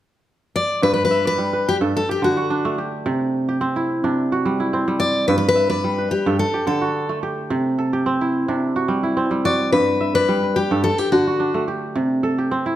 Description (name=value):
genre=west african traditional, West African string and xylophone music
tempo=108 BPM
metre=4/4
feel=straight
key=G major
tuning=A4 = 440 Hz
part: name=picked steel-string acoustic guitar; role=melody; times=0.6-11.6 s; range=F#4 to D5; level=-19 LUFS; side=left 2 dB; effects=none
part: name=kora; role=arpeggios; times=0.8-12.8 s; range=G2 to E5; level=-20 LUFS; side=right 2 dB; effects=none
room=moderate recital hall reverb, RT60 1.5 s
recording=none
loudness=-18 LUFS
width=side -12 dB against mid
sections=0.8-12.8 A section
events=none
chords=0.0 N.C.; 0.8 G; 1.9 D; 3.1 C; 5.3 G; 6.4 D; 7.5 C; 9.7 G; 10.8 D; 12.0 C